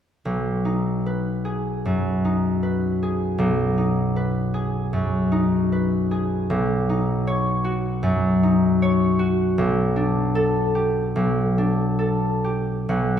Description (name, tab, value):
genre	classical, solo harp piece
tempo	64-80 BPM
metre	4/4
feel	rubato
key	B major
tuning	A4 = 441 Hz
part	concert harp	solo	0.3-13.2 s	B1 to F#5	-19 LUFS	equal	none
room	wet concert hall reverb, RT60 1.9 s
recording	heard from further back in the room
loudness	-20 LUFS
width	side -9 dB against mid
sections	0.3-12.9 A section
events	none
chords	0.3 B6; 6.5 Badd9; 9.6 Gadd9/B